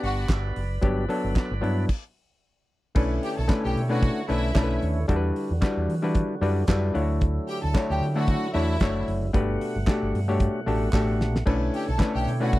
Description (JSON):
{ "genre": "disco", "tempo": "113 BPM", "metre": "4/4", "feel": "swing 56% on 16ths", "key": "B minor", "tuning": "A4 = 440 Hz", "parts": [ { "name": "clear studio string section", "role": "second line", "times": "0.0-12.6 s", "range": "E4 to A5", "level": "-32 LUFS", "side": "equal", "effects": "none" }, { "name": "overdriven clav", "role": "accompaniment", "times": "0.0-12.6 s", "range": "F#3 to F#5", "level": "-27 LUFS", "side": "left 2 dB", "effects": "none" }, { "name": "percussive tonewheel organ", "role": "sustained chords", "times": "0.0-12.6 s", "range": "B2 to B5", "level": "-35 LUFS", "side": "right 2 dB", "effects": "slow rotary speaker" }, { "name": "fingered electric bass", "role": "bass", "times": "0.0-12.6 s", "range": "F#1 to E3", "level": "-26 LUFS", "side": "equal", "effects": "none" }, { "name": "damped 70s drum kit", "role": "drums", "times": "0.0-12.6 s", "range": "crash cymbal, hi-hat, kick drum, snare drum", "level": "-23 LUFS", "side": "equal", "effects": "none" }, { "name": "group handclap", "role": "percussion", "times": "0.3-12.1 s", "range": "none", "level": "-40 LUFS", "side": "right 5 dB", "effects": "none" } ], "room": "little or no reverb", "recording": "dry, close 1970s-style studio recording", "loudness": "-22 LUFS", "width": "side -17 dB against mid", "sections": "0.0-3.0 A section; 3.0-12.6 B section", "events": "stop 1.9-3.0; clav fill 6.2-7.2; drum fill 10.9-11.5", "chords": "0.0 Gmaj7; 3.0 Bm11; 5.1 Em9; 7.0 Dmaj9; 9.3 Gmaj9; 11.5 Bm11" }